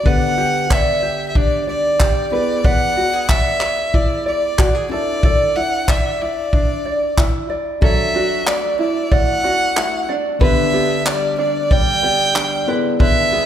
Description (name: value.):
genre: acoustic pop.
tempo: 93 BPM.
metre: 4/4.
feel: straight.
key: D major.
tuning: A4 = 440 Hz.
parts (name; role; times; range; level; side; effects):
warm violin; melody; 0.0-13.5 s; D5 to G5; -20 LUFS; right 1 dB; none.
felt-muted upright piano; accompaniment; 0.0-13.5 s; D3 to E5; -26 LUFS; left 6 dB; none.
tenor ukulele; accompaniment; 0.0-13.5 s; D4 to D5; -21 LUFS; right 1 dB; none.
natural country drum kit; drums; 0.1-13.2 s; handclaps, kick drum; -17 LUFS; equal; none.
open-back banjo; arpeggios; 7.8-13.5 s; D3 to E4; -24 LUFS; right 4 dB; none.
room: moderate concert hall reverb, RT60 2.1 s.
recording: recorded in a church or concert hall.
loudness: -15 LUFS.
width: side -10 dB against mid.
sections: 0.0-7.8 A section; 7.8-13.5 B section.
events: none.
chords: 0.1 G/D; 2.3 E7; 4.9 Asus4; 7.8 Dadd9; 10.4 G/D; 12.7 E7.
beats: | 0.06 0.70 1.35 2.00 | 2.65 3.29 3.94 4.59 | 5.24 5.88 6.53 7.18 | 7.83 8.47 9.12 9.77 | 10.41 11.06 11.71 12.36 | 13.00.